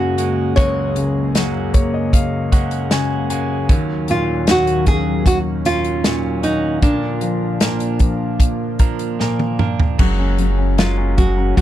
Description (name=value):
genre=pop ballad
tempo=77 BPM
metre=4/4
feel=straight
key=unclear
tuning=A4 = 439 Hz
part: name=nylon-string guitar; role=melody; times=0.0-11.6 s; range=D4 to Db5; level=-20 LUFS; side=right 1 dB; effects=slapback echo
part: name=clear concert grand piano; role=accompaniment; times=0.0-11.6 s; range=Db2 to Ab5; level=-22 LUFS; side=left 4 dB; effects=none
part: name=chorused pulse-width pad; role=sustained chords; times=0.0-11.6 s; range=Eb2 to Bb5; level=-24 LUFS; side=equal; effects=none
part: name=direct-recorded clean electric guitar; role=arpeggios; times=0.0-11.6 s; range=Gb2 to Bb4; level=-26 LUFS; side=right 14 dB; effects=none
part: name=natural country drum kit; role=drums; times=0.2-11.6 s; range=crash cymbal, hi-hat, kick drum, snare drum, toms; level=-16 LUFS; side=equal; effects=none
part: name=saturated sub bass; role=bass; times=10.0-11.6 s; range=Gb1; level=-18 LUFS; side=equal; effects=none
room=little or no reverb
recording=dry, close 1970s-style studio recording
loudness=-15 LUFS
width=side -12 dB against mid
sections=0.0-10.0 A section; 10.0-11.6 B section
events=grand piano fill 1.4-3.7; drum fill 9.2-10.0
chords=0.0 Gbadd9; 3.7 Ebm7; 6.8 Bb; 10.0 Gbadd9